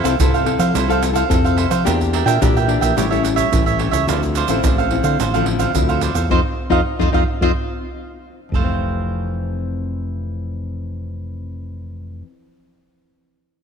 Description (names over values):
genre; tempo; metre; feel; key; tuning
samba and choro; 108 BPM; 4/4; straight; F major; A4 = 440 Hz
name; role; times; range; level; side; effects
cavaquinho; accompaniment; 0.0-12.3 s; D4 to G5; -21 LUFS; right 9 dB; none
nylon-string guitar; accompaniment; 0.0-12.3 s; F2 to A4; -22 LUFS; left 10 dB; none
fingered electric bass; bass; 0.0-12.2 s; F1 to F3; -21 LUFS; equal; none
egg shaker, pandeiro and surdo; percussion; 0.1-8.7 s; none; -21 LUFS; right 2 dB; none
room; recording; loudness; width
moderate plate reverb, RT60 3.0 s; 1960s-style stereo with parts hard left and right; -16 LUFS; side -6 dB against mid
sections
0.0-8.5 A section; 8.5-10.8 B section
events
band accent 6.3-8.5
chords
0.0 Fmaj7; 1.9 Em7b5; 3.0 A7; 4.1 Dm9; 6.3 F5; 8.5 Fmaj7